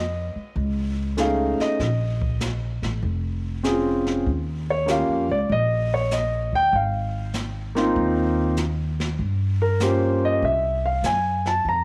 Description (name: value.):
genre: jazz piano trio.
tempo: 97 BPM.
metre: 4/4.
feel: swing 68% on 8ths.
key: unclear.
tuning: A4 = 438 Hz.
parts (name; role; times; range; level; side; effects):
warm concert grand piano; melody; 0.0-11.8 s; A3 to Bb5; -24 LUFS; equal; slapback echo.
upright bass; bass; 0.0-11.8 s; F1 to G2; -28 LUFS; equal; none.
jazz brush drum kit; drums; 0.6-11.8 s; brushed snare drum, hi-hat, kick drum, snare drum; -35 LUFS; equal; none.
room: light reverb, small room reverb.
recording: none.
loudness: -23 LUFS.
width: mono.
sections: 0.0-11.8 A section.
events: none.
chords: 0.0 F7alt; 1.8 Bbm9; 4.3 Eb9; 6.7 Ab6; 9.2 Gm7b5; 10.4 F#7(b5, no3)/C.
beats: 0.56 1.18 | 1.79 2.41 3.03 3.65 | 4.26 4.88 5.50 6.11 | 6.73 7.34 7.96 8.57 | 9.19 9.81 10.42 11.04 | 11.65.